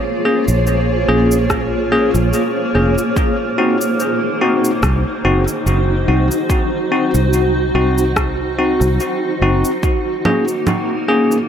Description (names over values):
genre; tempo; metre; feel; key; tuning
ambient dub; 72 BPM; 4/4; swing 55% on 16ths; unclear; A4 = 440 Hz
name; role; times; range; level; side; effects
granular cloud pad; sustained chords; 0.0-11.5 s; Bb3 to Db5; -18 LUFS; right 1 dB; built-in reverb
bell-like tine electric piano; stabs; 0.3-11.4 s; Bb3 to Ab4; -18 LUFS; left 2 dB; dub echo
fingered electric bass; bass; 0.5-9.6 s; F1 to C2; -17 LUFS; equal; none
electronic cabasa, rim click and congas; drums; 0.5-11.5 s; none; -23 LUFS; right 1 dB; small room ambience, dub echo
electronic kick drum; drums; 1.5-10.0 s; none; -19 LUFS; equal; small room ambience
room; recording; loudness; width
light reverb; none; -13 LUFS; side -8 dB against mid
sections
0.0-11.5 A section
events
none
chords
0.0 Bbm7; 3.2 Cdim; 9.8 Bbm7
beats
0.67 1.50 2.33 | 3.17 4.00 4.83 5.67 | 6.50 7.33 8.17 9.00 | 9.84 10.67